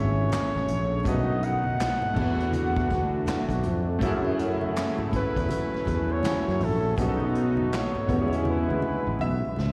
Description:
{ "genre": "R&B, neo-soul", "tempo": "81 BPM", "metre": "4/4", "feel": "swing 63% on 16ths", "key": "unclear", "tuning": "A4 = 442 Hz", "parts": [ { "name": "warm flugelhorn", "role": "melody", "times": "0.0-9.6 s", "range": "F#4 to F#5", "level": "-33 LUFS", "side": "equal", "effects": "none" }, { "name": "clear baby grand piano", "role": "accompaniment", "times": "0.0-9.7 s", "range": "D3 to G#5", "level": "-35 LUFS", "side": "equal", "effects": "slapback echo" }, { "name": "warm analog pad", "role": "sustained chords", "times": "0.0-9.7 s", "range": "E3 to G#4", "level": "-35 LUFS", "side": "equal", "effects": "chorus" }, { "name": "clear trombone section", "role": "stabs", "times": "0.0-9.5 s", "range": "B2 to F#4", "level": "-38 LUFS", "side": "equal", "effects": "none" }, { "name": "sustaining fretless electric bass", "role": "bass", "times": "0.0-9.7 s", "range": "G#1 to F#2", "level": "-29 LUFS", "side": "equal", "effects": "analog chorus" }, { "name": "unplugged drum kit", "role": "drums", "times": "0.3-9.7 s", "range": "crash cymbal, handclaps, hi-hat, kick drum, snare drum", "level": "-34 LUFS", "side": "equal", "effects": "none" }, { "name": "congas", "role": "percussion", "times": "0.3-9.7 s", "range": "none", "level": "-39 LUFS", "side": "equal", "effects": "none" } ], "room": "light reverb, small room ambience", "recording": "live gig heard through the venue's PA, recital hall reverb, vinyl crackle", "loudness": "-26 LUFS", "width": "mono", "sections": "0.0-9.7 A section", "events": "drum fill 8.5-9.7", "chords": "0.0 Amaj9; 1.1 B7; 2.2 E9sus4; 4.0 F#m7; 7.0 B7; 8.1 E13" }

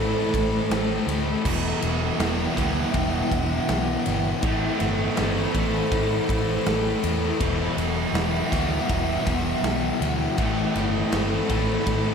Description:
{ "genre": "rock, shoegaze and dream pop", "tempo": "81 BPM", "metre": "4/4", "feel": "straight", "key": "E minor", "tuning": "A4 = 439 Hz", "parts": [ { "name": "icy glass pad", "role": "sustained chords", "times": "0.0-12.1 s", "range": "A4 to B5", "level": "-28 LUFS", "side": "equal", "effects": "chorus, built-in reverb" }, { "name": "biting overdriven guitar", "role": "riff", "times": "0.0-12.1 s", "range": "A2 to E4", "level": "-30 LUFS", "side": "right 7 dB", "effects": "reverse reverb" }, { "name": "distorted electric guitar", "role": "riff", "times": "0.0-12.1 s", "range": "E2 to A3", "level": "-32 LUFS", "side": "right 2 dB", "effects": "overdrive" }, { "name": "thick fuzz guitar", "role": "riff", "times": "0.0-12.1 s", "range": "E2 to A3", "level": "-27 LUFS", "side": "left 6 dB", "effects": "distortion, lush chorus" }, { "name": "vintage muted fingered electric bass", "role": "bass", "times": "0.0-12.1 s", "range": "E1 to A2", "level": "-29 LUFS", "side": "right 1 dB", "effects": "none" }, { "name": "big rock drum kit", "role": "drums", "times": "0.3-12.0 s", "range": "crash cymbal, kick drum, ride cymbal, snare drum", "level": "-29 LUFS", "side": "equal", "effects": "none" } ], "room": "wet lush hall reverb, RT60 2.7 s", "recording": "dreamy mix soaked in reverb", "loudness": "-21 LUFS", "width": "side -6 dB against mid", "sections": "0.0-12.1 A section", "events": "none", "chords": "0.0 Amadd9; 1.5 Emadd9; 4.4 Amadd9; 7.4 Emadd9; 10.4 Amadd9" }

